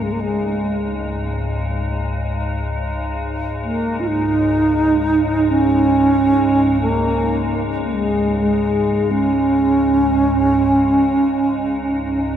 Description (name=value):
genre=world meditative, free-time meditation music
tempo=free time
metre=none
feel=none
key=unclear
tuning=A4 = 436 Hz
part: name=bright bass flute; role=melody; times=0.0-12.4 s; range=Ab3 to F4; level=-16 LUFS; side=right 1 dB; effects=diffuse ambient delay
part: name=icy glass pad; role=drone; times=0.0-12.4 s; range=Db2 to Ab2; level=-22 LUFS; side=left 1 dB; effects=chorus, built-in reverb
room=wet cathedral reverb, RT60 6.0 s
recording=dark, warm production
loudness=-15 LUFS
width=side -9 dB against mid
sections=0.0-12.4 A section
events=none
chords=none